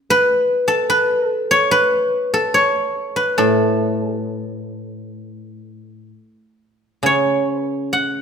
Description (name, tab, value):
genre	chinese traditional, Chinese solo plucked strings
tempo	60-74 BPM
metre	4/4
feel	rubato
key	A gong mode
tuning	A4 = 439 Hz
part	guzheng	solo	0.1-8.2 s	A2 to F#5	-16 LUFS	equal	none
room	wet recital hall reverb, RT60 1.7 s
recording	minimal, uncompressed stereo recording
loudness	-15 LUFS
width	side -6 dB against mid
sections	0.0-7.0 A section; 7.0-8.2 B section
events	none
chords	none